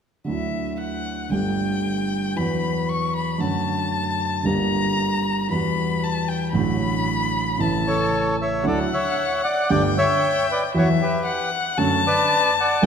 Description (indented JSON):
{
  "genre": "tango",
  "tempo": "115 BPM",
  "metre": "4/4",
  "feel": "rubato",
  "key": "D major",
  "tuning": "A4 = 442 Hz",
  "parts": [
    { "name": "warm concert grand piano", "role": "accompaniment", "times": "0.2-12.9 s", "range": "G1 to G4", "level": "-22 LUFS", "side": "right 1 dB", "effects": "none" },
    { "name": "warm violin", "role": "second line", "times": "0.3-12.9 s", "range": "E5 to C#6", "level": "-25 LUFS", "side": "left 4 dB", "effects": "none" },
    { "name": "bandoneon", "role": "melody", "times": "7.9-12.8 s", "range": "F#4 to G5", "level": "-22 LUFS", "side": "equal", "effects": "none" }
  ],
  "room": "wet concert hall reverb, RT60 1.6 s",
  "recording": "minimal, uncompressed stereo recording",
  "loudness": "-20 LUFS",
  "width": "side -7 dB against mid",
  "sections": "0.3-8.7 A section; 8.7-12.9 B section",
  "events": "none",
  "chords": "0.3 Dadd9; 1.3 Gsus2; 2.4 Esus2; 3.4 Dmaj7/F#; 4.5 Gm; 5.5 Emadd9; 6.6 D/A; 7.6 A; 8.7 Dadd9; 9.7 Gsus2; 10.7 Esus2; 11.8 Dmaj7/F#"
}